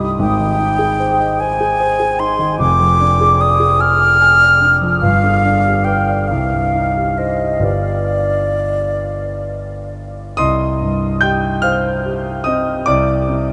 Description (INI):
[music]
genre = classical, romantic duo for flute and grand piano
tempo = 42-51 BPM (dotted quarters)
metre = 6/8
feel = rubato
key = C minor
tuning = A4 = 440 Hz
[part]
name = dark concert grand piano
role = accompaniment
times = 0.0-13.5 s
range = F1 to G6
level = -19 LUFS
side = equal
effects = none
[part]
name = mellow concert flute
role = melody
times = 0.2-9.9 s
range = D5 to F6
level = -17 LUFS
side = equal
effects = none
[sound]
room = wet huge ambient reverb, RT60 9.0 s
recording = in a vast, echoing space, nothing above 10.4 kHz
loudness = -15 LUFS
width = mono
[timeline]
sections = 0.0-10.4 A section; 10.4-13.5 B section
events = none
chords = 0.2 Abmaj7; 2.6 Ddim/F; 5.0 G7; 6.3 Cm; 7.6 G; 10.4 Cm; 12.9 N.C.